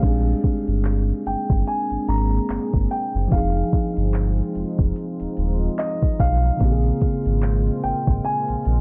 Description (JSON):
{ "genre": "contemporary R&B", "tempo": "73 BPM", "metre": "4/4", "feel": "swing 58% on 16ths", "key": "unclear", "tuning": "A4 = 439 Hz", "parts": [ { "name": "clear grand piano", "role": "melody", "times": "0.0-8.8 s", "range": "Eb5 to Bb5", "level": "-30 LUFS", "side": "equal", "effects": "tape echo" }, { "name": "tine electric piano", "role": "accompaniment", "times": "0.0-8.8 s", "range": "Db3 to Ab4", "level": "-29 LUFS", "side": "equal", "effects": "none" }, { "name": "deep dark ambient pad", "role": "sustained chords", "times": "0.0-8.8 s", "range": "Bb2 to Ab4", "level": "-33 LUFS", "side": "equal", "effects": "chorus, built-in reverb, sidechain pumping" }, { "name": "sub bass with octave", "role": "bass", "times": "0.0-8.8 s", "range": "Eb1 to B1", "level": "-23 LUFS", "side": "equal", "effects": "none" }, { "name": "smooth R&B drum kit", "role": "drums", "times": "0.0-8.8 s", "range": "crash cymbal, handclaps, hi-hat, kick drum", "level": "-24 LUFS", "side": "equal", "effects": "none" }, { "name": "soft round pluck", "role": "texture", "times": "0.0-0.2, 7.4-8.8 s", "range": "G6", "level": "-61 LUFS", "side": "equal", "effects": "none" } ], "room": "little or no reverb", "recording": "low-pass filter", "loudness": "-21 LUFS", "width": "mono", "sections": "0.0-8.8 A section", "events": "none", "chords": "0.0 Bb13; 3.3 Fm7; 6.6 Bbm9" }